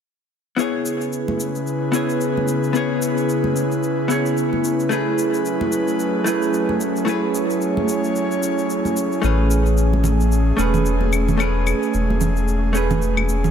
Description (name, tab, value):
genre	sunset chillout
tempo	111 BPM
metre	4/4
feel	swing 58% on 16ths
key	unclear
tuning	A4 = 441 Hz
part	vintage hollow-body jazz guitar	accompaniment	0.6-13.5 s	A3 to C#5	-22 LUFS	moving between left 4 dB and right 4 dB	auto-pan, digital delay
part	airy breathy pad	sustained chords	0.6-13.5 s	C#3 to C#5	-22 LUFS	right 1 dB	chorus
part	shaker and claves	drums	0.6-13.5 s	none	-30 LUFS	left 5 dB	none
part	congas	percussion	1.3-13.5 s	none	-27 LUFS	right 3 dB	none
part	round analog bass	bass	9.2-13.5 s	E1 to A1	-19 LUFS	left 1 dB	none
room	moderate lush hall reverb, RT60 2.1 s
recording	none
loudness	-18 LUFS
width	side -8 dB against mid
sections	0.6-13.5 A section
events	none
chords	0.6 C#m7; 4.9 F#m11; 9.2 Amaj9